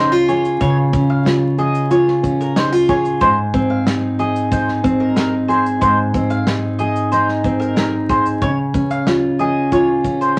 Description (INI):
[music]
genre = acoustic pop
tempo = 92 BPM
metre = 4/4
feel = straight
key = Ab major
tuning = A4 = 440 Hz
[part]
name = fingerpicked steel-string acoustic guitar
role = accompaniment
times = 0.0-10.4 s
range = Ab2 to Ab4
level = -18 LUFS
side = equal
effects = none
[part]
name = mandolin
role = arpeggios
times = 0.0-10.4 s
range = Bb4 to F5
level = -22 LUFS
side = equal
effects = none
[part]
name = natural country drum kit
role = drums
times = 0.3-10.4 s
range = kick drum, shaker, snare drum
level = -26 LUFS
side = equal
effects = none
[sound]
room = moderate club reverb, RT60 0.6 s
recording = vinyl crackle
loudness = -17 LUFS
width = mono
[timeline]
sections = 0.0-10.4 A section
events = none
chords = 0.0 Db; 3.2 Ab; 8.4 Db